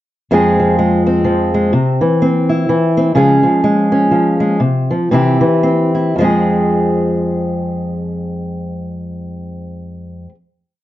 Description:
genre	folk, solo fingerstyle acoustic guitar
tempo	109-127 BPM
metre	3/4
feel	swing 59% on 8ths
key	F harmonic minor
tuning	A4 = 438 Hz
part	fingerpicked old ladder-braced acoustic guitar	solo	0.3-10.3 s	F2 to Ab4	-12 LUFS	equal	none
room	light reverb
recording	dark, warm production, nothing above 7.6 kHz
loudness	-12 LUFS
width	side -14 dB against mid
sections	0.3-6.2 interlude; 6.2-9.5 final chord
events	slowing down 3.1-6.2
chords	0.3 Fm; 1.7 C; 3.1 Db; 4.6 Csus4; 5.1 C; 6.2 Fm

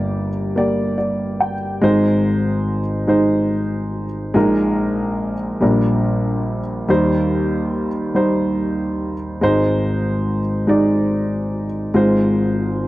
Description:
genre	folk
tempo	48 BPM (dotted quarters)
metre	6/8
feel	straight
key	unclear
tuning	A4 = 438 Hz
part	dark grand piano	solo	0.0-12.9 s	G1 to G5	-16 LUFS	equal	none
room	studio ambience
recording	dry, close 1970s-style studio recording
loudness	-16 LUFS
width	side -16 dB against mid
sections	0.0-12.9 A section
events	none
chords	0.0 Gm; 1.8 Ab; 4.4 Bb7sus4; 5.6 Bb6; 6.9 Eb6; 9.4 Ab; 11.9 Fm/Ab

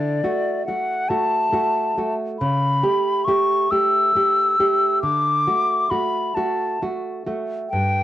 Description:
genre	romantic duo for flute and classical guitar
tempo	45 BPM (dotted quarters)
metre	6/8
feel	rubato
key	D major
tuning	A4 = 440 Hz
part	hollow concert flute	melody	0.0-8.0 s	D5 to E6	-19 LUFS	left 2 dB	none
part	nylon-string guitar	accompaniment	0.0-8.0 s	G2 to G4	-23 LUFS	right 2 dB	cassette tape
room	light reverb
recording	home recording on cassette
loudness	-18 LUFS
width	side -13 dB against mid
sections	0.0-8.0 A section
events	none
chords	0.0 D; 2.4 A7/C#; 5.0 D

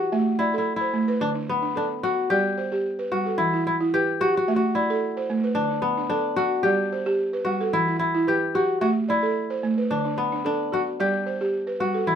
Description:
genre	west african traditional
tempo	111 BPM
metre	4/4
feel	straight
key	G major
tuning	A4 = 441 Hz
part	kora	melody	0.0-12.2 s	B3 to G4	-24 LUFS	left 3 dB	none
part	balafon	arpeggios	0.0-12.2 s	D3 to E5	-24 LUFS	right 3 dB	none
room	light reverb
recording	minimal, uncompressed stereo recording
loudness	-21 LUFS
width	side -8 dB against mid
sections	0.0-12.2 A section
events	none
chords	0.1 Am; 1.2 D; 2.3 G; 3.4 Em; 4.5 Am; 5.6 D; 6.7 G; 7.7 Em; 8.8 Am; 9.9 D; 11.0 G

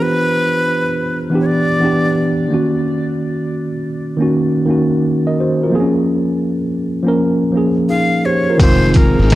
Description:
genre	lo-fi hip hop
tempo	84 BPM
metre	4/4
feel	swing 64% on 16ths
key	unclear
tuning	A4 = 439 Hz
part	breathy bright jazz flute	melody	0.0-2.5, 7.9-9.4 s	Bb4 to F5	-19 LUFS	equal	dub echo
part	tine electric piano	accompaniment	0.0-9.4 s	Eb3 to Eb5	-14 LUFS	equal	medium stereo tremolo, cassette tape
part	warm analog pad	sustained chords	8.6-9.4 s	F3 to Ab4	-22 LUFS	left 1 dB	chorus
part	upright bass	bass	8.6-9.3 s	F1 to Ab1	-15 LUFS	equal	none
part	trip hop sampler-style drum kit	drums	8.6-9.4 s	crash cymbal, hi-hat, kick drum, snare drum	-12 LUFS	equal	none
room	moderate echo chamber reverb, RT60 1.8 s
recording	echo-heavy mix, cassette tape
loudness	-13 LUFS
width	side -16 dB against mid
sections	0.0-8.6 A section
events	none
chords	0.0 Em7; 2.5 Ebm7; 5.7 Bbm7; 8.6 Fm7

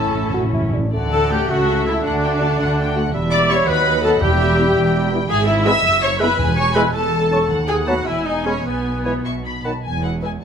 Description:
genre	quick classical-period movement for symphony orchestra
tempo	100-112 BPM (dotted quarters)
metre	6/8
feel	rubato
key	D major, E major from 5.3 s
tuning	A4 = 439 Hz
part	rich symphonic violin section	melody	0.0-10.4 s	C#5 to C#6	-27 LUFS	left 4 dB	none
part	dark chamber violin section	second line	0.0-10.3 s	A4 to E6	-26 LUFS	equal	none
part	mellow flute section	second line	0.0-9.7 s	A5 to C#6	-30 LUFS	left 3 dB	none
part	warm clarinet	second line	0.0-9.7 s	E4 to A5	-30 LUFS	left 1 dB	none
part	warm oboe	second line	0.0-9.2 s	B3 to E5	-27 LUFS	right 2 dB	none
part	mellow bassoon	accompaniment	0.0-9.7 s	D#3 to F#4	-25 LUFS	right 2 dB	none
part	rich chamber viola section	accompaniment	0.0-10.3 s	G#3 to E5	-20 LUFS	left 1 dB	none
part	mellow French horn section	sustained chords	0.0-9.7 s	F#3 to G4	-29 LUFS	left 4 dB	none
part	clear chamber double bass section	bass	0.0-10.4 s	E1 to D#2	-25 LUFS	right 3 dB	none
part	rich chamber cello section	bass	0.0-10.4 s	D#2 to D3	-24 LUFS	right 2 dB	none
part	timpani	percussion	0.0-0.8, 4.2-6.9 s	E2 to A2	-24 LUFS	left 1 dB	none
room	moderate recital hall reverb, RT60 1.4 s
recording	none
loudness	-15 LUFS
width	side -7 dB against mid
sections	0.9-9.8 A section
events	timpani fill 0.0-0.9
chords	0.0 A; 0.9 D; 1.5 A/C#; 2.0 D; 3.1 Em; 3.7 B/D#; 4.2 Em; 5.3 E/G#; 6.4 E; 6.9 F#m7/E; 7.5 B7/D#; 8.1 E; 8.7 E/B; 9.3 B; 9.8 E

